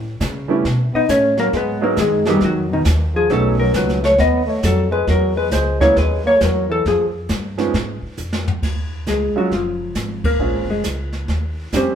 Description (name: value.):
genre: jazz, small-group swing and bop.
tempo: 135 BPM.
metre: 4/4.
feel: swing 65% on 8ths.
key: Eb minor from 8.6 s.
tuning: A4 = 441 Hz.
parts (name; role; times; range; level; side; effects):
upright bass; bass; 0.0-11.9 s; F1 to C#3; -22 LUFS; equal; none.
jazz brush drum kit; drums; 0.2-11.9 s; brushed snare drum, hi-hat, kick drum, ride cymbal, snare drum, toms; -25 LUFS; equal; none.
clear concert grand piano; accompaniment; 0.5-11.9 s; E#3 to G4; -22 LUFS; right 5 dB; none.
growling trombone; second line; 0.9-7.1 s; B2 to B3; -23 LUFS; right 3 dB; none.
vintage hollow-body jazz guitar; melody; 1.0-11.9 s; D#3 to D#5; -18 LUFS; left 2 dB; none.
room: moderate large studio reverb, RT60 1.3 s.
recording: band playing live in one room.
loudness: -16 LUFS.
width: side -8 dB against mid.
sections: 0.0-8.6 A section; 8.6-11.9 B section.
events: drum fill 8.2-8.6; band accent 10.2.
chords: 0.0 Aadd9; 1.5 G#m7; 3.3 B7; 5.1 E69; 6.8 C# (rootless); 8.6 Ebm11; 10.4 Bbm7; 11.3 Eb13.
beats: 0.20 0.64 1.08 | 1.53 1.97 2.42 2.86 | 3.30 3.75 4.19 4.63 | 5.08 5.52 5.96 6.41 | 6.85 7.29 7.74 8.18 | 8.62 9.07 9.51 9.96 | 10.40 10.84 11.29 11.73.